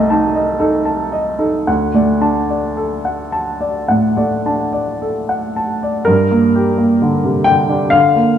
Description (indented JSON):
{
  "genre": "classical, romantic nocturne for solo piano",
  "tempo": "52-66 BPM",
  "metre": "4/4",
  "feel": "rubato",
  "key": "G minor",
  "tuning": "A4 = 440 Hz",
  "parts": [
    { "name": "warm upright piano", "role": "solo", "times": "0.0-8.4 s", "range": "C2 to A5", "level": "-13 LUFS", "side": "equal", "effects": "none" }
  ],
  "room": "moderate recital hall reverb, RT60 1.6 s",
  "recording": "dark, warm production",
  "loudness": "-13 LUFS",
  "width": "side -9 dB against mid",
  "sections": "0.0-6.1 A section; 6.1-8.4 B section",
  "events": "none",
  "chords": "0.0 Adim/C; 1.7 D; 6.1 Gm"
}